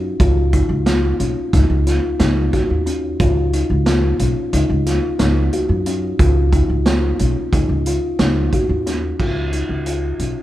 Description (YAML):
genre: progressive instrumental, band music in an uneven meter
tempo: 180 BPM (eighths)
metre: 9/8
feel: straight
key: Db mixolydian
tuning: A4 = 442 Hz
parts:
  - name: kalimba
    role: arpeggios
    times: 0.0-10.4 s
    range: Db4 to Gb4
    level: -20 LUFS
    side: left 2 dB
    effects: none
  - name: upright bass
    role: bass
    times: 0.0-10.3 s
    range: Cb2 to Gb2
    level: -18 LUFS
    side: equal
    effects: none
  - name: vintage drum kit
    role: drums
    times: 0.2-10.3 s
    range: crash cymbal, hi-hat, kick drum, snare drum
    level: -21 LUFS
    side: right 1 dB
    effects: none
room: moderate large studio reverb, RT60 1.1 s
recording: band playing live in one room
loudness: -15 LUFS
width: side -14 dB against mid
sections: 0.0-9.2 A section; 9.2-10.4 B section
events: none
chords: 0.2 Db; 1.5 Dbadd9; 3.2 Db; 4.5 Dbadd11; 6.2 Db; 7.5 Dbadd9; 9.2 Db